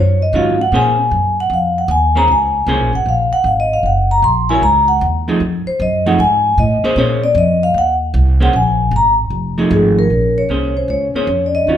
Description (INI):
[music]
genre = jazz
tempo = 153 BPM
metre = 4/4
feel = swing 66% on 8ths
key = Bb minor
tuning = A4 = 443 Hz
[part]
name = vibraphone with medium mallets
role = melody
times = 0.0-11.8 s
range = G#4 to C6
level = -14 LUFS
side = left 1 dB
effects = none
[part]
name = upright bass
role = bass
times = 0.0-11.8 s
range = F1 to Bb2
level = -17 LUFS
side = equal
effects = none
[part]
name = vintage hollow-body jazz guitar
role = accompaniment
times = 0.3-11.8 s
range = Eb3 to Db5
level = -19 LUFS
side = right 2 dB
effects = none
[part]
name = breathy trombone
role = second line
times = 10.1-11.8 s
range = Db4 to Eb4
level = -23 LUFS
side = right 1 dB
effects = none
[sound]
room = moderate large studio reverb, RT60 1.1 s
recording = band playing live in one room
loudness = -12 LUFS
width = side -10 dB against mid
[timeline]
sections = 0.0-10.1 A section; 10.1-11.8 B section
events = vibraphone solo 0.0-10.1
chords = 0.0 Ebm9; 0.7 Bbm9; 3.8 Gb; 5.4 F7#9; 7.0 Bbm9; 7.8 Eb5; 8.5 Absus2; 9.3 F7#9; 10.1 Bbm9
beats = 0.33 | 0.72 1.11 1.50 1.89 | 2.29 2.67 3.07 3.46 | 3.85 4.24 4.63 5.02 | 5.41 5.80 6.19 6.58 | 6.97 7.37 7.76 8.15 | 8.54 8.93 9.32 9.72 | 10.11 10.50 10.89 11.29 | 11.68